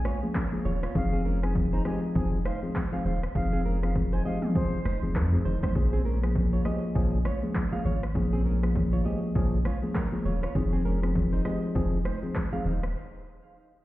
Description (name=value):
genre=afrobeats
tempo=100 BPM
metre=4/4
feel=swing 58% on 16ths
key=Bb minor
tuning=A4 = 441 Hz
part: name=breathy bright concert flute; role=melody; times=0.0-5.0 s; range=C5 to Bb5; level=-40 LUFS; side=equal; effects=ping-pong delay
part: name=punchy sub bass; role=bass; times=0.0-13.0 s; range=Eb1 to F2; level=-28 LUFS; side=equal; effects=none
part: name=congas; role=percussion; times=0.0-12.8 s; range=none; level=-36 LUFS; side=right 3 dB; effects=none
part: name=flamenco guitar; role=riff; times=0.1-12.8 s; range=C4 to F5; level=-38 LUFS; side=right 5 dB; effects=ping-pong delay
part: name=deep house drum kit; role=drums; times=0.1-12.9 s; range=handclaps, hi-hat, kick drum, rim click, shaker, toms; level=-30 LUFS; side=equal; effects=overdrive
part: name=mellow tine electric piano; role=accompaniment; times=0.2-12.7 s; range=F3 to Ab4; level=-30 LUFS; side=left 2 dB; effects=none
room=digital ambience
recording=heard muffled through a wall, stone room reverb, EQ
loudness=-25 LUFS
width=side -16 dB against mid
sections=0.0-13.8 A section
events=break 13.0-13.8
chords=0.0 Bbm7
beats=0.35 | 0.95 1.55 2.15 2.75 | 3.35 3.95 4.55 5.15 | 5.75 6.35 6.95 7.55 | 8.15 8.75 9.35 9.95 | 10.55 11.15 11.75 12.35 | 12.95